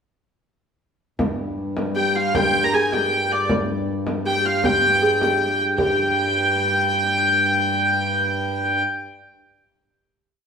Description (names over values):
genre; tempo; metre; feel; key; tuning
medieval dance; 105 BPM (dotted quarters); 6/8; straight; G phrygian; A4 = 441 Hz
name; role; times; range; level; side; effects
hand-pumped harmonium; drone; 1.2-8.8 s; G2; -27 LUFS; left 1 dB; none
frame drum; percussion; 1.2-6.0 s; none; -26 LUFS; equal; none
clear hurdy-gurdy; melody; 2.0-8.8 s; D5 to Bb5; -19 LUFS; equal; none
Celtic harp; second line; 2.0-9.5 s; F4 to Bb4; -25 LUFS; right 1 dB; none
room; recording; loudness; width
wet stone room reverb, RT60 1.3 s; band playing live in one room; -18 LUFS; side -6 dB against mid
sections
1.2-5.8 A section; 5.8-8.0 final note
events
none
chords
none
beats
| 1.19 1.77 | 2.34 2.92 | 3.49 4.07 | 4.64 5.21 | 5.78 6.34 | 6.91 7.47